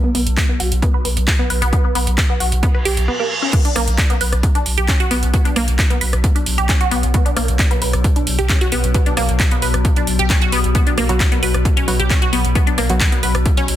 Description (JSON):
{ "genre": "driving peak-time techno", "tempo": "133 BPM", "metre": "4/4", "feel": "straight", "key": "unclear", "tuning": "A4 = 440 Hz", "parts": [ { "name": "resonant blip pluck", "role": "riff", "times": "0.0-13.6 s", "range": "A#3 to B4", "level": "-21 LUFS", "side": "equal", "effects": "phaser, sidechain pumping, digital delay" }, { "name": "metallic inharmonic drone", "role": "drone", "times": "0.0-13.8 s", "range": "B2 to F#3", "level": "-27 LUFS", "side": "left 4 dB", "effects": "chorus, built-in reverb, sidechain pumping" }, { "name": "saturated sub bass", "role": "bass", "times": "0.1-13.8 s", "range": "B1", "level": "-18 LUFS", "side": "equal", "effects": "overdrive, sidechain pumping, low-pass filter" }, { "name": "techno drum kit", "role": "drums", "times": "0.1-13.8 s", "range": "crash cymbal, handclaps, hi-hat, rim click", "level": "-22 LUFS", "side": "right 1 dB", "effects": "none" }, { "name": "electronic kick drum", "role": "drums", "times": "0.4-13.6 s", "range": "none", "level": "-16 LUFS", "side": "equal", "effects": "none" }, { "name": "reverse cymbal", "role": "sound effects", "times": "2.8-3.5 s", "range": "none", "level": "-23 LUFS", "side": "right 4 dB", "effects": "none" }, { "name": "filtered dub chord stab", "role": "stabs", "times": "11.1-13.1 s", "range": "F#3 to F#4", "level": "-25 LUFS", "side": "right 1 dB", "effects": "chorus, sidechain pumping, digital delay" } ], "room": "light reverb, digital ambience", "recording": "dense, heavily limited modern master", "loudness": "-14 LUFS", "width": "side -12 dB against mid", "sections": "0.0-3.5 A section; 3.5-13.8 B section", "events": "filter sweep on synth arpeggio sound 0.0-3.5; reverse cymbal 2.8-3.5; break 3.1-3.5; drop 3.5-13.8", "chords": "0.0 B5", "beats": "0.37 0.82 1.28 | 1.73 2.18 2.63 3.08 | 3.53 3.98 4.43 4.88 | 5.34 5.79 6.24 6.69 | 7.14 7.59 8.04 8.49 | 8.95 9.40 9.85 10.30 | 10.75 11.20 11.65 12.10 | 12.55 13.01 13.46" }